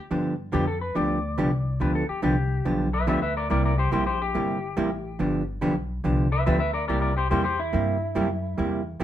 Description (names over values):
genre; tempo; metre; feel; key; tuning
country, western swing; 142 BPM; 4/4; swing 66% on 8ths; G major; A4 = 440 Hz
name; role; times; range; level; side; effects
hollow-body jazz guitar; accompaniment; 0.1-9.0 s; C3 to G4; -26 LUFS; right 2 dB; none
upright bass; bass; 0.1-9.0 s; G1 to G2; -27 LUFS; left 1 dB; none
clean lap steel guitar; second line; 0.5-8.8 s; E4 to E5; -28 LUFS; left 2 dB; none
room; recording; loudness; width
moderate studio reverb, RT60 0.6 s; band playing live in one room; -22 LUFS; side -11 dB against mid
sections
0.1-9.0 A section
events
electric slide guitar solo 0.1-9.0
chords
0.1 G7; 3.5 C7; 5.2 G7; 6.9 C7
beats
| 0.11 0.53 0.96 1.38 | 1.80 2.23 2.65 3.08 | 3.50 3.92 4.35 4.77 | 5.20 5.62 6.04 6.47 | 6.89 7.32 7.74 8.16 | 8.59 9.01